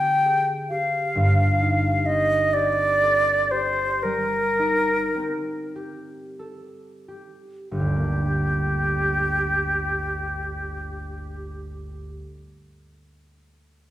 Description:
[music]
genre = classical, romantic duo for flute and harp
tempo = 28-46 BPM (dotted quarters)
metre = 12/8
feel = rubato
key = G minor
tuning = A4 = 439 Hz
[part]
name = mellow silver concert flute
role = melody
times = 0.0-12.1 s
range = G4 to G5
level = -22 LUFS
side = equal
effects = none
[part]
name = concert harp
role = accompaniment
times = 0.0-12.5 s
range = G1 to A4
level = -26 LUFS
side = right 1 dB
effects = none
[sound]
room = wet recital hall reverb, RT60 1.4 s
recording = heard from further back in the room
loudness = -20 LUFS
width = side -13 dB against mid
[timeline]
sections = 0.0-7.7 A section; 7.7-13.9 B section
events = slowing down 0.0-7.7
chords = 0.0 G7; 1.2 Cm/G; 7.7 Gm

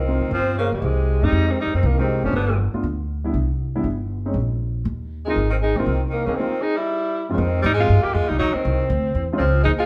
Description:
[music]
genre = jazz, small-group swing and bop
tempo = 237 BPM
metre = 4/4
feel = swing 59% on 8ths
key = unclear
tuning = A4 = 440 Hz
[part]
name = breathy tenor saxophone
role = melody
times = 0.0-2.6, 5.3-9.9 s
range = Ab3 to G4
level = -26 LUFS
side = equal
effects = none
[part]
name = clear tenor saxophone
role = second line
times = 0.0-2.6, 5.2-9.9 s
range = C3 to Bb3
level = -28 LUFS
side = equal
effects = none
[part]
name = upright bass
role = bass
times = 0.0-9.9 s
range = Gb1 to Ab2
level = -23 LUFS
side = equal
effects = none
[part]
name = warm grand piano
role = accompaniment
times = 0.1-9.4 s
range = F2 to Bb4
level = -29 LUFS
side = equal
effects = none
[sound]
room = wet large studio reverb, RT60 1.0 s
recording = band playing live in one room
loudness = -21 LUFS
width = mono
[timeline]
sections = 0.0-7.4 A section; 7.4-9.9 B section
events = break 6.4-7.4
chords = 0.3 Bbm69/G; 0.8 C5; 1.3 Fm9; 2.3 G; 3.3 C5; 4.4 N.C.; 4.9 Eb5; 5.4 Ab69; 6.9 C; 7.4 Fm9; 8.4 Cdim; 8.9 Dsus2

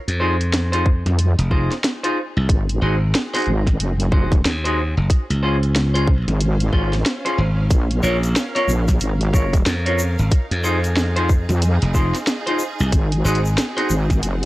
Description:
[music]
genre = glitch hop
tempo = 92 BPM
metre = 4/4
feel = swing 61% on 16ths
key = unclear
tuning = A4 = 440 Hz
[part]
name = clear studio string section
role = texture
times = 0.0-14.5 s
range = C4 to Gb5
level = -34 LUFS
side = right 2 dB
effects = sidechain pumping
[part]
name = glassy slap bass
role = bass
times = 0.1-13.6 s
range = F1 to F2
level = -19 LUFS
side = equal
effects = none
[part]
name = drum and bass drum kit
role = drums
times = 0.1-14.5 s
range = hi-hat, snare drum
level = -23 LUFS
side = equal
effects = none
[part]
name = clean electric guitar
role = stabs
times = 0.2-13.9 s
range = Db4 to Db5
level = -24 LUFS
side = equal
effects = sidechain pumping, analog delay
[part]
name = electronic kick drum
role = drums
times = 0.9-14.2 s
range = none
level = -16 LUFS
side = equal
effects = none
[part]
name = wobble bass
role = bass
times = 1.1-14.5 s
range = Gb1 to F2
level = -18 LUFS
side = equal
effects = chorus
[part]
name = egg shaker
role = percussion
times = 7.7-14.4 s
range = none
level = -33 LUFS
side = left 3 dB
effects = none
[sound]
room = little or no reverb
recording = dry, gritty hardware recording, transformer saturation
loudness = -16 LUFS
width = side -18 dB against mid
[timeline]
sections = 0.0-14.5 A section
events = fade-in on string section 0.0-14.5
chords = 0.0 Fm7; 2.5 Ab7; 5.1 Dbmaj7; 7.7 Bbm; 10.3 Fm7; 12.9 Ab7

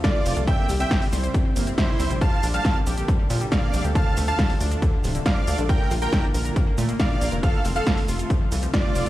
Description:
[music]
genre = uplifting trance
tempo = 138 BPM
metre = 4/4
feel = straight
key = G dorian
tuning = A4 = 440 Hz
[part]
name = dense compressed supersaw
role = melody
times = 0.0-9.1 s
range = E4 to A5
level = -29 LUFS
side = right 2 dB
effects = sidechain pumping, tape echo
[part]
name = warm concert grand piano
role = second line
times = 0.0-9.1 s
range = C5 to A5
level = -34 LUFS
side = right 1 dB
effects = vintage 12-bit sampler grit, sidechain pumping, digital delay
[part]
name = analog pluck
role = arpeggios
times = 0.0-9.1 s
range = C3 to C5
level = -31 LUFS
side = equal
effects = chorus, sidechain pumping, digital delay
[part]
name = electronic kick drum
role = drums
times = 0.0-8.8 s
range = none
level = -22 LUFS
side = equal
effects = overdrive
[part]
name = punchy analog drum machine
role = drums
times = 0.0-9.1 s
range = hi-hat, shaker, snare drum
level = -29 LUFS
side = equal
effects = overdrive, sidechain pumping on hats, sidechain pumping on perc
[part]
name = tight sequencer bass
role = bass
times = 0.3-9.1 s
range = D1 to Bb2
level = -25 LUFS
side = equal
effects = sidechain pumping
[sound]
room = little or no reverb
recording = played on a big sound system in a bare room, large studio reverb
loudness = -20 LUFS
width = side -15 dB against mid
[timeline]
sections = 0.0-9.1 A section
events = band accent 8.7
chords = 0.5 C; 2.2 Gmadd9/Bb; 4.0 Dm; 5.7 Bb; 7.4 F

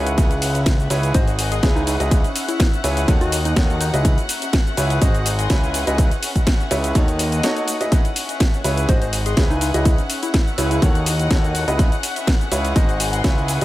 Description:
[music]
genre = piano house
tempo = 124 BPM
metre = 4/4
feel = swing 54% on 16ths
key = C# minor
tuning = A4 = 440 Hz
[part]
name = rich chamber violin section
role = sustained chords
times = 0.0-13.6 s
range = F#5 to F#6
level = -30 LUFS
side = left 4 dB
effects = sidechain pumping
[part]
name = clear upright piano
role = riff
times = 0.0-13.6 s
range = D#4 to D#5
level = -25 LUFS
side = right 1 dB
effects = vintage 12-bit sampler grit, sidechain pumping, dub echo
[part]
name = fat analog bass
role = bass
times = 0.0-13.6 s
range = G#1 to D#2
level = -22 LUFS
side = equal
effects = sidechain pumping
[part]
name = muted studio string section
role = texture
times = 0.0-13.6 s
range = A#3 to B#5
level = -30 LUFS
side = left 2 dB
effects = sidechain pumping
[part]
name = house drum kit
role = drums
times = 0.1-13.6 s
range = hi-hat, ride cymbal, shaker, snare drum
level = -25 LUFS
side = equal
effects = dub echo
[part]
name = electronic kick drum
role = drums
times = 0.2-13.3 s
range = none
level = -17 LUFS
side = equal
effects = none
[part]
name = soft struck synth lead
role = melody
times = 1.1-4.1, 8.9-10.8 s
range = D#4 to B#4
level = -29 LUFS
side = left 1 dB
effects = chorus, vintage 12-bit sampler grit, dub echo
[sound]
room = light reverb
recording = echo-heavy mix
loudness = -16 LUFS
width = side -16 dB against mid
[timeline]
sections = 0.0-13.6 A section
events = break 7.4-7.9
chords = 0.2 C#m7; 1.1 G#7; 1.9 C#m7; 3.1 D#m7b5; 4.0 C#m7; 5.0 G#7; 5.7 C#m7; 7.0 D#m7b5; 7.9 C#m7; 8.9 G#7; 9.6 C#m7; 10.8 D#m7b5; 11.8 C#m7; 12.8 G#7

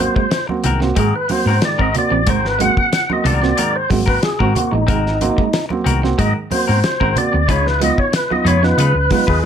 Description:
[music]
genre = funk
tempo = 92 BPM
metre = 4/4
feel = straight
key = Ab mixolydian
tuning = A4 = 442 Hz
[part]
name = tonewheel organ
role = melody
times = 0.0-9.5 s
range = Eb4 to Gb5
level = -18 LUFS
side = equal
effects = overdrive, fast rotary speaker
[part]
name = warm upright piano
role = stabs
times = 0.0-9.3 s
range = Ab2 to Gb4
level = -22 LUFS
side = right 4 dB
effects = none
[part]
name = hollow-body short-scale fingered electric bass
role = bass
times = 0.0-9.4 s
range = Ab1 to Db3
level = -18 LUFS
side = left 1 dB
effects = none
[part]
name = congas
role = percussion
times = 0.0-9.3 s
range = none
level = -27 LUFS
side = right 4 dB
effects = none
[part]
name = semi-hollow electric guitar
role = accompaniment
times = 0.2-9.5 s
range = C4 to Cb5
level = -25 LUFS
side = left 7 dB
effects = none
[part]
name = clean electric guitar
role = riff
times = 0.2-9.2 s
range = Ab3 to Db4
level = -24 LUFS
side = right 12 dB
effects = lush chorus
[part]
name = damped 70s drum kit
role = drums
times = 0.2-9.4 s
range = hi-hat, kick drum, snare drum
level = -20 LUFS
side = left 1 dB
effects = none
[sound]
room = small room ambience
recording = none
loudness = -14 LUFS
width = side -8 dB against mid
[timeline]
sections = 0.0-9.5 A section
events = tonewheel organ solo 0.0-9.5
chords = 0.0 Ab9; 7.5 Db9

